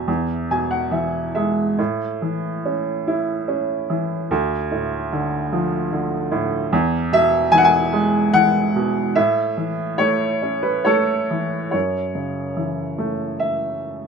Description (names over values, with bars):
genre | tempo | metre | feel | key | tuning
classical, lyrical solo piano | 68-76 BPM | 3/4 | rubato | A major | A4 = 442 Hz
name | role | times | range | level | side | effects
clear upright piano | solo | 0.0-14.1 s | D2 to G#5 | -18 LUFS | right 1 dB | none
room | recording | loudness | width
light reverb | none | -18 LUFS | side -6 dB against mid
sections
0.0-11.7 A section; 11.7-14.1 B section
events
upright piano fill 0.1-1.8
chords
0.1 E; 1.8 A; 4.3 Dm; 6.7 Eadd9; 9.2 A; 11.7 F#m7